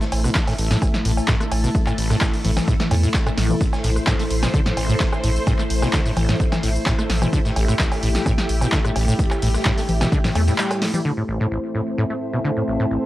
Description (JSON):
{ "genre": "acid house", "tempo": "129 BPM", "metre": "4/4", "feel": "straight", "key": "A minor", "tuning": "A4 = 440 Hz", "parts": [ { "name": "string machine, full ensemble", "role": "sustained chords", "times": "0.0-13.1 s", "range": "A3 to C5", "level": "-26 LUFS", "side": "left 1 dB", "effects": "ensemble chorus, sidechain pumping" }, { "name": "acid bass, saw", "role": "riff", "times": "0.0-13.0 s", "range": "A1 to A3", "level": "-23 LUFS", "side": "equal", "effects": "tube saturation, lush chorus, sidechain pumping, tape echo" }, { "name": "breakbeat sampler-style drum kit", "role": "drums", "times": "0.0-11.0 s", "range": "hi-hat, snare drum", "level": "-35 LUFS", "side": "equal", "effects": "none" }, { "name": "punchy analog drum machine", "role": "drums", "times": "0.0-11.0 s", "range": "congas, cowbell, handclaps, hi-hat, rim click, shaker, snare drum", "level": "-25 LUFS", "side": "equal", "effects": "overdrive" }, { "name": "saturated sub bass", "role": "bass", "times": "0.1-10.5 s", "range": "A1 to E2", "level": "-21 LUFS", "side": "equal", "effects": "sidechain pumping" }, { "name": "electronic kick drum", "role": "drums", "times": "0.4-10.2 s", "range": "none", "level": "-21 LUFS", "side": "equal", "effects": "overdrive" }, { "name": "warbly tape-like pad", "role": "texture", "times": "11.6-13.1 s", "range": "C4 to A5", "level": "-28 LUFS", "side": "right 1 dB", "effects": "chorus, built-in reverb, sidechain pumping" } ], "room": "little or no reverb", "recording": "dry, gritty hardware recording, transformer saturation, cassette tape", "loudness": "-18 LUFS", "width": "side -16 dB against mid", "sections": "0.0-11.1 A section; 11.1-13.1 B section", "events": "drop 0.0-11.1; break 10.6-11.1; band accent 10.6; filter sweep on string machine 11.1-13.1", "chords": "0.0 Am" }